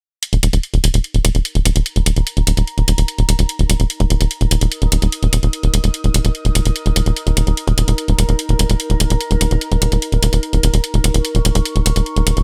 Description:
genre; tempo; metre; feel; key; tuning
psychedelic trance; 147 BPM; 4/4; straight; unclear; A4 = 440 Hz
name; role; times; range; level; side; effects
electronic hi-hat; drums; 0.2-12.4 s; none; -23 LUFS; equal; studio reverb
warbly tape-like pad; texture; 1.9-12.4 s; Eb4 to Eb6; -30 LUFS; equal; chorus, built-in reverb
tight sequencer bass; bass; 0.3-12.4 s; Eb1; -16 LUFS; equal; none
room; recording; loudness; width
little or no reverb; none; -17 LUFS; mono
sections
0.2-12.4 A section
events
fade-in on ambient pad 0.2-12.4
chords
0.2 Eb5

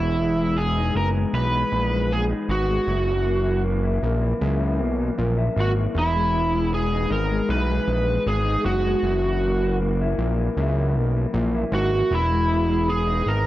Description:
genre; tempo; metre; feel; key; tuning
indie pop, bedroom pop; 78 BPM; 4/4; straight; E lydian; A4 = 440 Hz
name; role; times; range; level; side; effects
overdriven slide guitar; melody; 0.0-13.5 s; E4 to B4; -24 LUFS; right 1 dB; lush chorus, slapback echo
electric guitar through a small old amp; accompaniment; 0.0-13.5 s; F#2 to E4; -26 LUFS; left 3 dB; wide subtle chorus, vibrato effect
fat analog bass; bass; 0.0-13.5 s; E1 to C#2; -23 LUFS; equal; none
room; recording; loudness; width
moderate spring reverb, RT60 2.5 s; dark, warm production; -20 LUFS; side -15 dB against mid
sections
0.0-13.5 A section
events
none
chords
0.0 Emaj7; 2.9 F#7; 6.0 Emaj7; 9.0 F#7; 12.1 Emaj7

